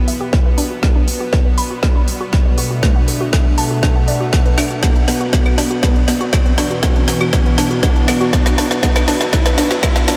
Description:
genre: melodic techno.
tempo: 120 BPM.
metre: 4/4.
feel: straight.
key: B minor.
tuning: A4 = 440 Hz.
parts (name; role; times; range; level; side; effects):
warm analog pad; sustained chords; 0.0-10.2 s; B2 to E5; -26 LUFS; equal; chorus, sidechain pumping.
woody wave-folded pluck; arpeggios; 0.0-10.2 s; A3 to B5; -24 LUFS; equal; subtle chorus, cassette tape, sidechain pumping, delay.
bowed-like drone; drone; 0.0-10.2 s; B2 to B3; -32 LUFS; equal; built-in reverb, sidechain pumping.
riser; sound effects; 0.7-10.2 s; none; -31 LUFS; equal; none.
warbly tape-like pad; texture; 0.0-10.2 s; B2 to F#5; -28 LUFS; equal; chorus, built-in reverb, sidechain pumping.
deep house drum kit; drums; 0.1-10.2 s; claves, hi-hat, snare drum; -23 LUFS; equal; sidechain pumping on hats, high-pass filter on hats, high-pass filter on snare, sidechain pumping on perc, high-pass filter on perc.
electronic kick drum; drums; 0.3-9.9 s; none; -17 LUFS; equal; distortion.
room: moderate huge ambient reverb, RT60 7.7 s.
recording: dreamy mix soaked in reverb.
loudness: -15 LUFS.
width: mono.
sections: 0.0-10.2 A section.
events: build-up 0.0-10.2; drum fill 0.0-10.2; filter sweep on synth pluck 0.0-10.2; filter sweep on analog synth pad 0.0-10.2; riser 0.7-10.2.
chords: 0.3 Bm; 2.3 D/B; 6.3 Bm.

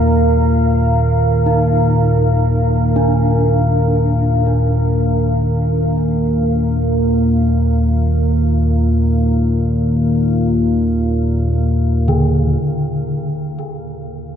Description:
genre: ambient.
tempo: free time.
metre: none.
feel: none.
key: unclear.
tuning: A4 = 435 Hz.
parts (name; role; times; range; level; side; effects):
deep dark ambient pad; sustained chords; 0.0-14.4 s; Bb4 to F5; -21 LUFS; right 1 dB; chorus, built-in reverb.
analog drone; drone; 0.0-14.4 s; Eb2 to Bb2; -14 LUFS; equal; chorus.
gamelan-type bronze metallophone; arpeggios; 1.5-13.3 s; D3 to Eb4; -23 LUFS; right 1 dB; ping-pong delay.
room: wet huge ambient reverb, RT60 8.1 s.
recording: dreamy mix soaked in reverb.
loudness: -13 LUFS.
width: side -8 dB against mid.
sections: 0.0-12.6 A section; 12.6-14.4 B section.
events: fade-out on ambient pad 0.0-12.6; filter sweep on synth drone 0.0-12.6.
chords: 0.0 Eb5.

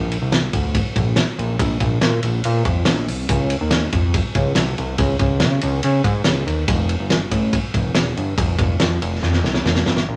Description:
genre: jangly indie pop.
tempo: 142 BPM.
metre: 4/4.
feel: straight.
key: unclear.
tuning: A4 = 437 Hz.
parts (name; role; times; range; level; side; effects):
fat analog bass; bass; 0.0-10.2 s; E1 to Db3; -22 LUFS; equal; none.
loose indie drum kit; drums; 0.1-10.1 s; hi-hat, kick drum, ride cymbal, snare drum; -22 LUFS; equal; none.
room: moderate studio reverb, RT60 0.8 s.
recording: none.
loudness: -19 LUFS.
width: mono.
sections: 0.0-10.1 A section.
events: drum fill 9.2-10.1.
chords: none.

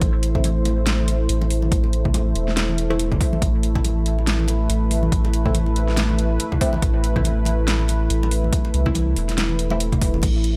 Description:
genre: deep dubstep.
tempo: 141 BPM.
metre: 4/4.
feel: swing 58% on 16ths, half-time.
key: A minor.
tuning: A4 = 440 Hz.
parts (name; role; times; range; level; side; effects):
dark analog pad; sustained chords; 0.0-10.6 s; A3 to C5; -28 LUFS; equal; chorus.
soft dub sub bass; bass; 0.0-10.6 s; E1 to C2; -23 LUFS; equal; none.
dubstep drum kit; drums; 0.0-10.5 s; crash cymbal, hi-hat, snare drum; -28 LUFS; equal; none.
electronic kick drum; drums; 0.0-10.3 s; none; -24 LUFS; equal; overdrive.
filtered dub chord stab; stabs; 0.3-9.9 s; A3 to E4; -32 LUFS; equal; phaser, dub echo.
congas; percussion; 0.3-10.3 s; none; -31 LUFS; equal; dub echo.
room: little or no reverb.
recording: dry, gritty hardware recording, transformer saturation.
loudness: -20 LUFS.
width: mono.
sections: 0.0-10.6 A section.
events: none.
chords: 0.0 Am.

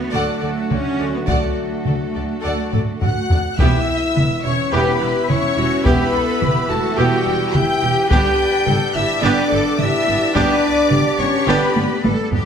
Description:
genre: cinematic, epic orchestral film score.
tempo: 106 BPM.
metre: 4/4.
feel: straight.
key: E dorian.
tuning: A4 = 441 Hz.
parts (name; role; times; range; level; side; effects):
rich symphonic violin section; melody; 0.0-12.0 s; A4 to G6; -26 LUFS; left 3 dB; none.
mellow French horn section; sustained chords; 0.0-12.0 s; G3 to G4; -24 LUFS; left 2 dB; none.
warm trombone section; sustained chords; 0.0-11.7 s; D3 to B3; -29 LUFS; right 3 dB; none.
warm woodwind section; sustained chords; 0.0-12.5 s; A3 to F#5; -28 LUFS; equal; none.
rich symphonic cello section; bass; 0.0-12.5 s; A3 to B4; -25 LUFS; right 2 dB; none.
rich symphonic violin section; second line; 0.1-12.0 s; F#4 to G5; -26 LUFS; left 2 dB; none.
clear symphonic viola section; accompaniment; 0.1-12.4 s; D3 to D5; -26 LUFS; right 1 dB; none.
clear chamber double bass section; bass; 0.1-12.4 s; E1 to D2; -24 LUFS; right 3 dB; none.
taiko ensemble; drums; 0.7-12.5 s; none; -20 LUFS; equal; none.
concert flute; second line; 3.0-12.0 s; G4 to G5; -24 LUFS; left 2 dB; none.
clear trumpet; stabs; 3.6-11.7 s; G4; -26 LUFS; right 2 dB; none.
room: moderate scoring stage reverb, RT60 1.5 s.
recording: none.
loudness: -15 LUFS.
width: side -7 dB against mid.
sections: 0.0-3.6 A section; 3.6-12.5 B section.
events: drum fill 2.7-3.6, 11.8-12.5.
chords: 0.0 D; 3.6 Em; 8.1 G.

